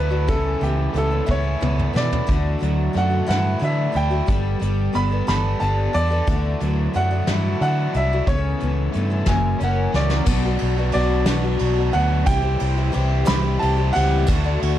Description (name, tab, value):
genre	folk rock and heartland rock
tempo	60 BPM (dotted quarters)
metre	6/8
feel	straight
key	D major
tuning	A4 = 440 Hz
part	bright grand piano	melody	0.0-14.8 s	G4 to B5	-26 LUFS	right 2 dB	plate reverb
part	picked twelve-string acoustic guitar	accompaniment	0.0-14.8 s	F#2 to A#4	-28 LUFS	left 6 dB	plate reverb
part	overdriven electric guitar	riff	0.0-14.8 s	F#2 to A4	-26 LUFS	right 1 dB	spring reverb
part	fingered electric bass	bass	0.0-14.8 s	F#1 to D3	-21 LUFS	equal	none
part	soft brush drum kit	drums	0.3-14.8 s	crash cymbal, hi-hat, kick drum, ride cymbal, snare drum, toms	-24 LUFS	equal	none
part	tambourine	percussion	10.3-14.4 s	none	-41 LUFS	right 5 dB	none
room	light reverb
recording	dark, warm production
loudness	-18 LUFS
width	side -12 dB against mid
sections	0.0-10.3 A section; 10.3-14.8 B section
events	drum fill 1.3-2.3, 9.9-10.3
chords	0.3 Aadd9/C#; 2.3 Dadd9; 4.3 Gadd9; 6.3 Dadd9; 8.3 Aadd9/C#; 9.3 F#7; 10.3 Bm; 12.3 C; 14.3 Dadd9